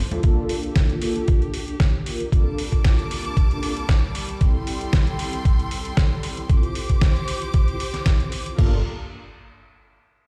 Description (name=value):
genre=nu-disco, nu disco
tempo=115 BPM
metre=4/4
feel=swing 54% on 16ths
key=G dorian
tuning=A4 = 439 Hz
part: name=rich studio string section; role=sustained chords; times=0.0-8.8 s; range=G3 to D6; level=-35 LUFS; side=equal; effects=sidechain pumping
part: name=fat analog bass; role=bass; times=0.0, 8.6-8.8 s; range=G1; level=-24 LUFS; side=equal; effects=none
part: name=mellow synth brass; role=accompaniment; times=0.1-8.8 s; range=Bb3 to C5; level=-32 LUFS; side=equal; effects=chorus, sidechain pumping, delay
part: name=dusty soul sampler-style drum kit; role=drums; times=0.1-8.7 s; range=crash cymbal, hi-hat, snare drum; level=-31 LUFS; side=equal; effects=studio reverb
part: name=electronic kick drum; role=drums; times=0.2-8.7 s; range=none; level=-21 LUFS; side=equal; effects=studio reverb
room=light reverb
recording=played on a big sound system in a bare room, large studio reverb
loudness=-22 LUFS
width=mono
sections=0.0-8.6 A section; 8.6-10.3 B section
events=filter sweep on analog polysynth 0.0-8.6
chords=0.2 Gm7; 2.3 Bbmaj7/G; 4.4 Am7/G; 6.5 Dm7; 8.6 Gm7